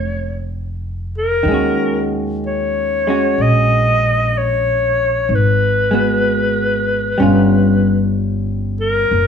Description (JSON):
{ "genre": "jazz ballad", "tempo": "63 BPM", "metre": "4/4", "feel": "swing 67% on 8ths", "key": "Eb minor", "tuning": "A4 = 440 Hz", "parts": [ { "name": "warm clarinet", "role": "melody", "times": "0.0-9.3 s", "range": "Bb4 to Eb5", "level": "-17 LUFS", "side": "left 1 dB", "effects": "none" }, { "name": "vintage hollow-body jazz guitar", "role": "accompaniment", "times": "0.0-9.1 s", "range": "Eb3 to Gb4", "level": "-18 LUFS", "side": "equal", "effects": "none" }, { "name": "upright bass", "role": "bass", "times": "0.0-9.3 s", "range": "F1 to Eb2", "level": "-19 LUFS", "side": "left 1 dB", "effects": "none" } ], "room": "light reverb", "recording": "studio ambience", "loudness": "-14 LUFS", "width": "side -7 dB against mid", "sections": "0.0-1.5 A section; 1.5-9.3 B section", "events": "none", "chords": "0.0 Bbm7 (rootless); 1.5 Ebm7; 5.3 Abm7; 7.2 G7#11" }